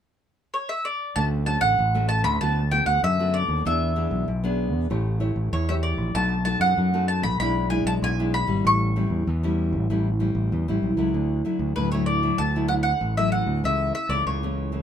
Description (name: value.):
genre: samba and choro.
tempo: 96 BPM.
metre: 4/4.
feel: straight.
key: D major.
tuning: A4 = 437 Hz.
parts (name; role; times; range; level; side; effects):
mandolin; melody; 0.5-14.8 s; B4 to C#6; -24 LUFS; equal; none.
nylon-string guitar; accompaniment; 1.2-14.8 s; A2 to C#5; -27 LUFS; left 1 dB; none.
growling fingered electric bass; bass; 1.2-14.8 s; G#1 to F#2; -24 LUFS; equal; overdrive.
room: moderate studio ambience, RT60 0.5 s.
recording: minimal, uncompressed stereo recording.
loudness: -21 LUFS.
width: side -9 dB against mid.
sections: 0.0-1.2 A section; 1.2-11.1 B section; 11.1-14.8 C section.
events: none.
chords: 0.0 N.C.; 1.2 Dmaj7; 2.4 Bm7/D; 3.7 E7; 4.9 A7; 6.2 B7; 7.4 E7/B; 8.6 A7; 11.1 Dadd9; 13.6 A/C#.